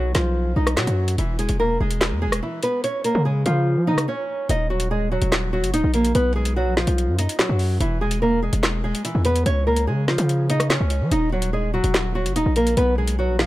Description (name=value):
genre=hip hop, drill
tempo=145 BPM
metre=4/4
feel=half-time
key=Eb minor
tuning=A4 = 440 Hz
part: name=nylon-string guitar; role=melody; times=0.0-13.5 s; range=E3 to D#5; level=-22 LUFS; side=equal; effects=none
part: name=hard-hitting 808-style bass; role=bass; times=0.0-13.5 s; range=Eb1 to F3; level=-21 LUFS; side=equal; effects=none
part: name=drill drum kit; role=drums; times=0.1-13.5 s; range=handclaps, hi-hat, rim click, snare drum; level=-24 LUFS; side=equal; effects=none
room=digital ambience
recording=none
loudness=-18 LUFS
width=side -16 dB against mid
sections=0.0-4.5 A section; 4.5-13.5 B section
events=break 4.1-4.5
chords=0.0 B; 1.2 E; 2.8 Db; 4.5 Ebm; 6.2 B; 7.8 E; 9.5 Db; 11.1 Ebm; 12.8 B5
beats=0.36 0.77 | 1.18 1.60 2.01 2.42 | 2.84 3.25 3.67 4.08 | 4.49 4.91 5.32 5.74 | 6.15 6.56 6.98 7.39 | 7.80 8.22 8.63 9.05 | 9.46 9.87 10.29 10.70 | 11.12 11.53 11.94 12.36 | 12.77 13.18